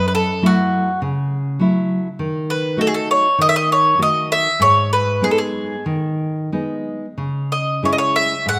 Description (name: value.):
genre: fado-style ballad.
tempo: 90-102 BPM.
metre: 4/4.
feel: rubato.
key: unclear.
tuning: A4 = 440 Hz.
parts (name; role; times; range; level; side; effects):
mandolin; melody; 0.0-8.6 s; F#4 to F#5; -18 LUFS; equal; none.
nylon-string guitar; accompaniment; 0.0-8.6 s; F#2 to F#4; -22 LUFS; equal; none.
room: moderate concert hall reverb, RT60 2.3 s.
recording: none.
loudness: -18 LUFS.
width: mono.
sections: 0.0-8.6 A section.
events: none.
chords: 0.0 F#m7; 2.2 D#dim; 4.6 G#m; 7.2 C#m.